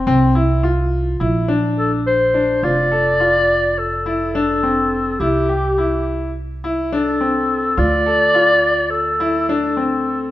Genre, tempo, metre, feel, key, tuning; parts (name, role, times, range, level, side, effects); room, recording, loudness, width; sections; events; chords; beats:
contemporary instrumental, chamber music in an uneven meter; 210 BPM (eighths); 9/8; straight; F major; A4 = 440 Hz
clear grand piano; arpeggios; 0.0-10.3 s; C4 to A4; -20 LUFS; left 2 dB
upright bass; bass; 0.0-10.3 s; F1 to D2; -22 LUFS; right 2 dB
warm clarinet; melody; 1.8-10.3 s; G4 to D5; -16 LUFS; left 1 dB
wet recital hall reverb, RT60 1.3 s; -15 LUFS; side -14 dB against mid
0.0-2.6 A section; 2.6-10.3 B section
0.1 Csus4; 1.2 Bb; 2.6 F6; 5.2 C; 7.8 Dm7
| 0.07 0.36 0.64 0.93 1.21 1.49 1.78 2.06 2.35 | 2.63 2.92 3.20 3.49 3.77 4.06 4.35 4.63 4.92 | 5.20 5.49 5.77 6.06 6.34 6.63 6.92 7.20 7.49 | 7.77 8.06 8.34 8.63 8.91 9.20 9.49 9.77 10.06